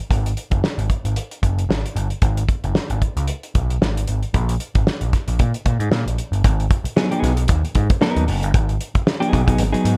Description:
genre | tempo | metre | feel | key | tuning
funk | 114 BPM | 4/4 | swing 56% on 16ths | G# minor | A4 = 440 Hz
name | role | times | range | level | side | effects
overdriven picked electric bass | bass | 0.1-10.0 s | F#1 to Bb2 | -23 LUFS | equal | none
warm soul drum kit | drums | 0.1-10.0 s | hi-hat, kick drum, snare drum | -22 LUFS | equal | none
clean electric guitar | accompaniment | 7.0-9.9 s | F#3 to A#4 | -22 LUFS | equal | spring reverb
room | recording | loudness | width
small room ambience | none | -20 LUFS | mono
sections
0.0-6.5 A section; 6.5-10.0 B section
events
none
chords
0.0 G#7(no3); 4.3 N.C.; 6.5 G#m7

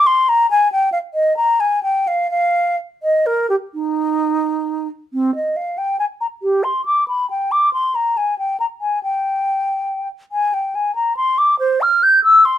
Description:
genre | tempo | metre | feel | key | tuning
classical, baroque-style fantasia for unaccompanied flute | 83-94 BPM (dotted quarters) | 12/8 | rubato | Eb major | A4 = 440 Hz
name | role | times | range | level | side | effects
mellow hollow silver concert flute | solo | 0.0-12.6 s | C4 to G6 | -15 LUFS | equal | none
room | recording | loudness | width
light reverb | minimal, uncompressed stereo recording | -15 LUFS | side -11 dB against mid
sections
0.0-5.1 A section; 5.1-12.6 A section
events
none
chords
none

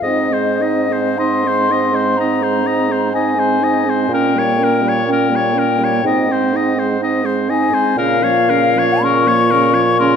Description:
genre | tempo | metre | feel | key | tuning
classical, slow romantic movement for wind quintet | 50-64 BPM | 4/4 | rubato | Ab major | A4 = 441 Hz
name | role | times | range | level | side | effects
mellow hollow silver concert flute | melody | 0.0-10.2 s | Eb5 to Db6 | -18 LUFS | left 8 dB | none
clear oboe | second line | 0.0-10.2 s | Bb4 to Eb5 | -21 LUFS | left 3 dB | none
clear French horn | accompaniment | 0.0-10.2 s | Db3 to C4 | -23 LUFS | right 1 dB | none
mellow clarinet | accompaniment | 0.0-10.2 s | Bb3 to Eb4 | -20 LUFS | right 7 dB | none
mellow bassoon | bass | 0.0-10.2 s | Ab2 to Bb2 | -20 LUFS | right 3 dB | none
room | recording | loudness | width
wet recital hall reverb, RT60 1.6 s | none | -13 LUFS | side -7 dB against mid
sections
0.0-10.2 A section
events
none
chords
0.0 Ab; 4.1 Gdim/Bb; 6.0 Ab; 8.0 Bbm

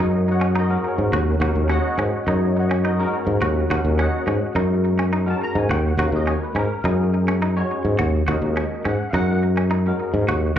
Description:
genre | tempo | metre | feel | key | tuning
jazz | 105 BPM | 4/4 | straight | Eb minor | A4 = 437 Hz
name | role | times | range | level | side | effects
barky tine electric piano | accompaniment | 0.0-10.5 s | Ab3 to Bb5 | -24 LUFS | left 2 dB | ensemble chorus, slapback echo
clean electric guitar | stabs | 0.0-10.6 s | Db4 to Gb4 | -28 LUFS | right 1 dB | wide subtle chorus, tape echo, slapback echo
sustaining fretless electric bass | bass | 0.0-10.6 s | Eb2 to Ab2 | -19 LUFS | equal | none
room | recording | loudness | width
digital ambience | live gig heard through the venue's PA, club reverb | -18 LUFS | side -10 dB against mid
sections
0.0-10.6 A section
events
none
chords
0.0 Ebm7

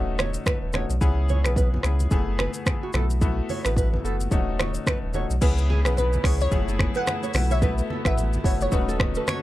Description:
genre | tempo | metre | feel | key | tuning
afrobeats | 109 BPM | 4/4 | swing 58% on 16ths | C# minor | A4 = 439 Hz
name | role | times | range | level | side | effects
clear concert grand piano | accompaniment | 0.0-9.4 s | A3 to G#4 | -31 LUFS | left 4 dB | none
warm sub bass | bass | 0.0-9.2 s | D#1 to C#2 | -24 LUFS | equal | none
nylon-string guitar | riff | 0.2-9.4 s | F#4 to C#5 | -32 LUFS | right 4 dB | none
afro-pop drum kit | drums | 0.2-9.4 s | crash cymbal, finger snaps, hi-hat, kick drum, rim click, shaker | -24 LUFS | equal | none
congas | percussion | 0.2-9.4 s | none | -34 LUFS | equal | none
warm studio string section | sustained chords | 5.4-9.4 s | C#3 to B4 | -36 LUFS | equal | none
glassy wavetable pluck | melody | 6.0-9.4 s | A4 to F#5 | -30 LUFS | equal | chorus, digital delay
room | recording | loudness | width
little or no reverb | dark, warm production | -21 LUFS | side -15 dB against mid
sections
0.0-5.4 A section; 5.4-9.4 B section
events
none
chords
0.0 D#m7b5; 1.0 C#m7; 2.1 F#m11; 2.9 B7sus4; 4.3 D#m7b5; 5.4 C#m7; 6.5 F#m11; 7.3 B7sus4; 8.7 D#m7b5

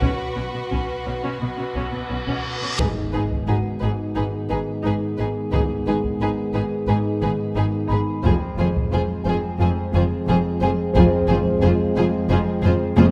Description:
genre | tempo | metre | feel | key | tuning
cinematic, suspense film score | 88 BPM | 4/4 | straight | unclear | A4 = 441 Hz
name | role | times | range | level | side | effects
dark studio violin section | melody | 0.0-13.1 s | B4 to C5 | -35 LUFS | equal | none
rich studio violin section | second line | 0.0-13.0 s | F#4 to G#4 | -32 LUFS | equal | none
warm studio viola section | accompaniment | 0.0-13.1 s | B3 to F4 | -33 LUFS | equal | none
concert harp | riff | 0.0-13.1 s | F2 to B3 | -31 LUFS | equal | none
warm studio cello section | bass | 0.0-13.0 s | F2 to B2 | -28 LUFS | equal | none
warm studio double bass section | bass | 0.0-13.0 s | F1 to B1 | -28 LUFS | equal | none
taiko ensemble | drums | 0.0-13.1 s | none | -27 LUFS | equal | none
reverse cymbal and impact | sound effects | 1.5-5.5 s | none | -34 LUFS | equal | none
celesta | texture | 0.0-13.1 s | F#4 to B5 | -35 LUFS | equal | none
rich studio violin section | texture | 0.0-2.4 s | B5 to D6 | -42 LUFS | equal | none
mellow French horn section | sustained chords | 2.8-13.1 s | B3 to Ab4 | -30 LUFS | equal | none
warm trombone section | sustained chords | 2.8-13.1 s | D#3 to G#3 | -31 LUFS | equal | none
room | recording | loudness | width
light reverb | none | -22 LUFS | mono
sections
0.0-2.8 A section; 2.8-13.1 B section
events
reverse cymbal 1.6-2.8; impact 2.8-5.5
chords
0.0 Bsus2; 2.8 G#m; 8.3 Fm

